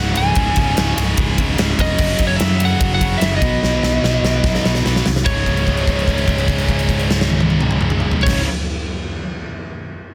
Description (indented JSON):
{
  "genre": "hard rock",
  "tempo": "148 BPM",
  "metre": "4/4",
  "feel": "straight",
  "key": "unclear",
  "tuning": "A4 = 439 Hz",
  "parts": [
    { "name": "lightly driven lead guitar", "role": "melody", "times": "0.0-8.4 s", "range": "C#5 to G#5", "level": "-25 LUFS", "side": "equal", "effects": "slapback echo" },
    { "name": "tonewheel organ", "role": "sustained chords", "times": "0.0-8.4 s", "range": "F#3 to D#5", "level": "-34 LUFS", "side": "equal", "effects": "none" },
    { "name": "cranked stack guitar", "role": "riff", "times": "0.0-8.5 s", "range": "C#2 to B3", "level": "-29 LUFS", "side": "equal", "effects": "overdrive" },
    { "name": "high-gain distorted guitar", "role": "riff", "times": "0.0-8.5 s", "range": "C#2 to B3", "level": "-29 LUFS", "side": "equal", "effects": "distortion" },
    { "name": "scooped high-gain guitar", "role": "riff", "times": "0.0-8.5 s", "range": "C#2 to B3", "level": "-25 LUFS", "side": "equal", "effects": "distortion" },
    { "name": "fingered electric bass", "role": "bass", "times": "0.0-8.4 s", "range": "C#1 to F#2", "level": "-23 LUFS", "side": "equal", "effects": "none" },
    { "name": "huge arena drum kit", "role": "drums", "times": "0.2-8.4 s", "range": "crash cymbal, kick drum, ride cymbal, snare drum, toms", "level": "-22 LUFS", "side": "equal", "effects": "none" }
  ],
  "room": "light reverb",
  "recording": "dense, heavily limited modern master",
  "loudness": "-17 LUFS",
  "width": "mono",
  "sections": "0.0-5.2 A section; 5.2-8.5 B section",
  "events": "drum fill 3.6-5.2; held note 5.2-8.3",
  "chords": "0.0 C#5; 2.0 F#5; 3.4 B; 5.2 C#5",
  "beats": "| 0.37 0.78 1.18 1.59 | 2.00 2.40 2.81 3.22 | 3.62 4.03 4.43 4.84 | 5.25 5.65 6.06 6.47 | 6.87 7.28 7.69 8.09"
}